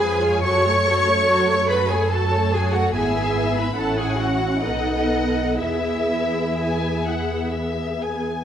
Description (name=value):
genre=classical, slow romantic movement for string orchestra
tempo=59-74 BPM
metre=3/4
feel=rubato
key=E major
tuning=A4 = 442 Hz
part: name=dark symphonic violin section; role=melody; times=0.0-8.4 s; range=A4 to G#5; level=-28 LUFS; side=left 6 dB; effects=none
part: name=warm symphonic violin section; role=second line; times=0.0-7.5 s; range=D#5 to C#6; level=-25 LUFS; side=left 1 dB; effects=none
part: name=dark symphonic viola section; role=accompaniment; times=0.0-8.2 s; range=E#3 to A4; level=-24 LUFS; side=equal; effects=none
part: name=warm studio double bass section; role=bass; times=0.0-8.3 s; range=G#1 to F#2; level=-26 LUFS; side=right 2 dB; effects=none
part: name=warm symphonic cello section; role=bass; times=0.0-7.5 s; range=D#4 to C#5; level=-24 LUFS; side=right 2 dB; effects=none
room=wet concert hall reverb, RT60 1.8 s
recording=none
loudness=-18 LUFS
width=side -9 dB against mid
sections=0.0-8.4 A section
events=none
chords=0.4 F#m; 2.9 E/G#; 3.8 F#m7/A; 4.6 B7; 5.6 E